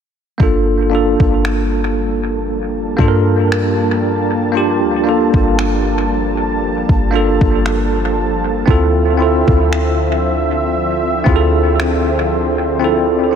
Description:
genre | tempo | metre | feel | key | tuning
contemporary R&B | 58 BPM | 4/4 | swing 54% on 16ths | G minor | A4 = 442 Hz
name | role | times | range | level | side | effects
bell-like tine electric piano | accompaniment | 0.4-13.4 s | Bb3 to Bb4 | -16 LUFS | right 1 dB | fast stereo tremolo, dub echo
lush unison pad | sustained chords | 0.4-13.4 s | D3 to A5 | -20 LUFS | equal | chorus
clean 808-style bass | bass | 0.4-13.4 s | G1 to G2 | -18 LUFS | equal | none
crisp 8-bit digital drum machine | drums | 0.4-12.0 s | finger snaps, kick drum | -19 LUFS | equal | overdrive, vintage 12-bit sampler grit, dub echo
room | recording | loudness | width
light reverb | echo-heavy mix | -12 LUFS | side -7 dB against mid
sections
0.4-13.4 A section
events
none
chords
0.4 Gm9; 8.7 Dm9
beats
| 0.40 1.44 2.47 3.50 | 4.54 5.57 6.61 7.64 | 8.68 9.71 10.75 11.78 | 12.81

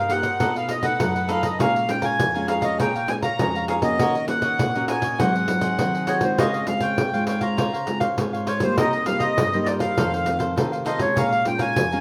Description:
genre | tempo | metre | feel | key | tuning
samba and choro | 100 BPM | 4/4 | straight | unclear | A4 = 440 Hz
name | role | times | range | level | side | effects
accordion | melody | 0.0-12.0 s | C5 to Bb5 | -26 LUFS | equal | none
cavaquinho | accompaniment | 0.0-12.0 s | Eb4 to Bb5 | -30 LUFS | equal | none
nylon-string guitar | accompaniment | 0.0-12.0 s | F2 to G4 | -29 LUFS | equal | none
pandeiro | percussion | 0.1-12.0 s | none | -28 LUFS | equal | none
room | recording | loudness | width
moderate large studio reverb, RT60 0.9 s | none | -22 LUFS | mono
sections
0.0-12.0 A section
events
none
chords
0.4 B7#11; 1.6 Bbm7; 4.0 Ebm7; 5.2 Ab7; 6.4 Dbmaj7; 8.8 Cm7; 10.0 F7; 11.2 Bbm7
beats
0.41 1.00 | 1.60 2.20 2.80 3.40 | 4.00 4.59 5.19 5.79 | 6.39 6.99 7.59 8.19 | 8.79 9.38 9.98 10.58 | 11.18 11.78

